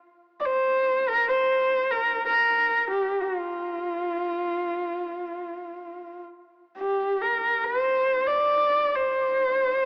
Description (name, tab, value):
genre	mongolian traditional, Mongolian folk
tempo	free time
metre	none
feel	none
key	F zhi mode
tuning	A4 = 440 Hz
part	warm horsehead fiddle	solo	0.4-9.9 s	F4 to D5	-25 LUFS	equal	cassette tape
room	moderate spring reverb, RT60 3.0 s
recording	home recording on cassette, AM radio sound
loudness	-25 LUFS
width	mono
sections	0.0-9.9 A section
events	none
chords	none